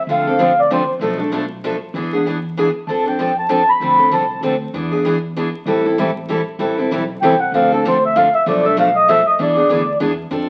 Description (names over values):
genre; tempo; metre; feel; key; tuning
acoustic string swing (jazz manouche); 193 BPM; 3/4; swing 59% on 8ths; A minor; A4 = 441 Hz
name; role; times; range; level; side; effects
mellow accordion; melody; 0.0-4.4, 7.2-10.0 s; A4 to B5; -16 LUFS; equal; none
picked steel-string acoustic guitar; accompaniment; 0.1-10.5 s; B2 to A4; -20 LUFS; equal; none
upright bass; bass; 0.1-10.5 s; A1 to F2; -31 LUFS; equal; none
room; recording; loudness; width
wet studio reverb, RT60 0.8 s; very old 78 rpm record, vinyl crackle; -17 LUFS; mono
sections
0.0-6.6 A section; 6.6-10.5 B section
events
accordion solo 6.6-10.5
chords
0.1 Dm7; 1.0 Bm7b5; 1.9 E7; 2.9 F6; 3.8 Dm7; 4.7 E7; 5.7 Am7; 7.5 Dm7; 8.5 Bm7b5; 9.4 E7